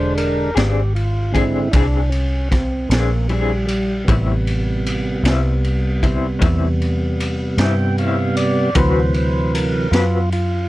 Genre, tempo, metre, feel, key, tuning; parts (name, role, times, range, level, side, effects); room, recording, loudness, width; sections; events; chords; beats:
slow blues; 51 BPM (dotted quarters); 12/8; straight; A4 = 437 Hz
tonewheel organ; sustained chords; 0.0-10.7 s; C3 to G5; -20 LUFS; right 1 dB; slow rotary speaker
vintage muted fingered electric bass; bass; 0.0-10.7 s; E1 to G2; -19 LUFS; equal
raw garage drum kit; drums; 0.2-10.5 s; kick drum, ride cymbal, snare drum; -23 LUFS; equal
electric guitar through a small old amp; accompaniment; 0.6-10.2 s; A2 to B4; -23 LUFS; left 5 dB; tremolo
light reverb; -16 LUFS; side -17 dB against mid
0.0-10.7 A section
tonewheel organ solo 0.0-10.7
0.0 Eaug7; 4.1 Am7; 8.8 D13
0.56 1.73 2.90 | 4.07 5.24 6.41 7.58 | 8.75 9.92